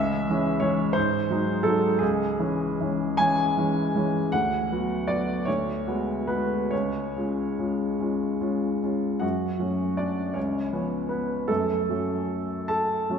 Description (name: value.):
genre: classical, romantic character piece for solo piano.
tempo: 46-59 BPM (dotted quarters).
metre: 6/8.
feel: rubato.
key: unclear.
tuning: A4 = 440 Hz.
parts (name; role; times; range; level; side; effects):
warm baby grand piano; solo; 0.0-13.2 s; C#2 to A5; -23 LUFS; equal; none.
room: wet concert hall reverb, RT60 2.3 s.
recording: minimal, uncompressed stereo recording.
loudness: -23 LUFS.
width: side -7 dB against mid.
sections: 0.0-9.2 A section; 9.2-13.2 A section.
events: none.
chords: 0.0 C#m; 1.0 G#7; 2.0 C#m; 4.3 Bm/D; 5.5 G#m7b5/D; 6.7 C#; 9.2 F#m; 10.4 C#7; 11.5 F#m.